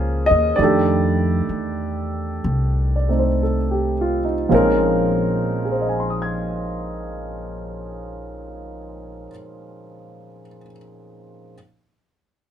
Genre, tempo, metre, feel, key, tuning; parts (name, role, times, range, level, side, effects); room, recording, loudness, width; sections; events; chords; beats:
jazz ballad; 53-71 BPM; 4/4; swing 67% on 8ths; A4 = 440 Hz
warm concert grand piano; accompaniment; 0.0-11.6 s; Bb2 to Ab6; -20 LUFS; right 1 dB
upright bass; bass; 0.0-9.3 s; Bb1 to F2; -24 LUFS; left 1 dB
moderate booth ambience, RT60 0.2 s; dark, warm production; -18 LUFS; side -9 dB against mid
0.0-4.5 A section; 4.5-9.0 B section
slowing down 0.0-4.5
0.0 Gbmaj9 (rootless); 0.6 F13; 4.5 Bbm11
| 0.58 1.48 2.42 3.43 | 4.52 5.64 6.77 7.90